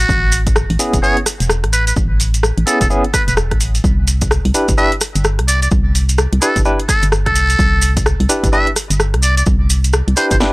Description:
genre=UK garage, two-step garage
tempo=128 BPM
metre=4/4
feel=swing 61% on 16ths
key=unclear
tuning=A4 = 439 Hz
part: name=trumpet with metal mute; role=melody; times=0.0-10.4 s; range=F#4 to E5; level=-19 LUFS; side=right 1 dB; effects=tape echo
part: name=organ-like FM bass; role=bass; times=0.0-10.4 s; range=E1 to C2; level=-15 LUFS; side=equal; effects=tube saturation, sidechain pumping
part: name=garage drum kit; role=drums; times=0.0-10.5 s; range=hi-hat, rim click, snare drum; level=-20 LUFS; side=equal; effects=studio reverb
part: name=maracas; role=percussion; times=0.0-10.5 s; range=none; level=-21 LUFS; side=right 2 dB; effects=none
part: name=electronic kick drum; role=drums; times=0.1-10.4 s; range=none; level=-18 LUFS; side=equal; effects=studio reverb
part: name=barky tine electric piano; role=stabs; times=0.8-10.5 s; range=B3 to B4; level=-18 LUFS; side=equal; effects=overdrive, medium tremolo, low-pass filter, tape echo
room=little or no reverb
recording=dry, gritty hardware recording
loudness=-12 LUFS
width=side -23 dB against mid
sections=0.0-10.5 A section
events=none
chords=0.0 Amaj9; 3.8 Cmaj9

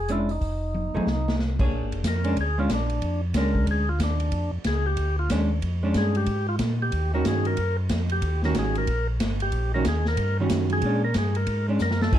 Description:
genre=soul jazz organ trio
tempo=184 BPM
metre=4/4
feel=swing 63% on 8ths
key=unclear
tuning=A4 = 440 Hz
part: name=percussive tonewheel organ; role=melody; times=0.0-12.2 s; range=D4 to Bb4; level=-29 LUFS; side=equal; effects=slow rotary speaker
part: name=mellow tonewheel organ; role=bass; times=0.0-12.2 s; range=F1 to Bb2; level=-26 LUFS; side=equal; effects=slow rotary speaker
part: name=vintage hollow-body jazz guitar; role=accompaniment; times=0.1-12.2 s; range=Eb3 to Db5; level=-26 LUFS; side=right 1 dB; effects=none
part: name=swinging big-band drum kit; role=drums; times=0.1-12.2 s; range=crash cymbal, hi-hat, kick drum, ride cymbal, rim click, snare drum, toms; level=-28 LUFS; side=equal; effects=none
room=light reverb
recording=dark, warm production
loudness=-22 LUFS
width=side -11 dB against mid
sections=0.0-1.7 A section; 1.7-12.2 B section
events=drum fill 0.7-1.4, 11.8-12.1; tonewheel organ solo 1.7-12.2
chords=0.4 Fm7; 1.7 Bb7#9; 6.9 Eb7#9; 10.8 Bb7#9

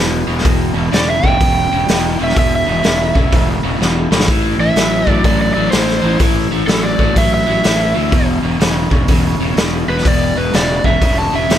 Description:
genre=blues rock power trio and southern rock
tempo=125 BPM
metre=4/4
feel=swing 64% on 8ths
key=E minor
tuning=A4 = 441 Hz
part: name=crunchy overdriven guitar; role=riff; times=0.0-11.6 s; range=E2 to F#3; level=-18 LUFS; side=left 1 dB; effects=none
part: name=fuzz fingered electric bass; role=bass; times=0.0-11.6 s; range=E1 to D2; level=-19 LUFS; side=equal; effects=overdrive
part: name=raw garage drum kit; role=drums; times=0.4-11.6 s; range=hi-hat, kick drum, snare drum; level=-16 LUFS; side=equal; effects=none
part: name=overdriven slide guitar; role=melody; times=0.9-11.6 s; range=A4 to A5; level=-18 LUFS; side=right 2 dB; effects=none
room=little or no reverb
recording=none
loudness=-12 LUFS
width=side -10 dB against mid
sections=0.0-11.6 A section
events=drum fill 3.8-4.3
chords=0.0 Em; 4.3 A5; 8.1 E5

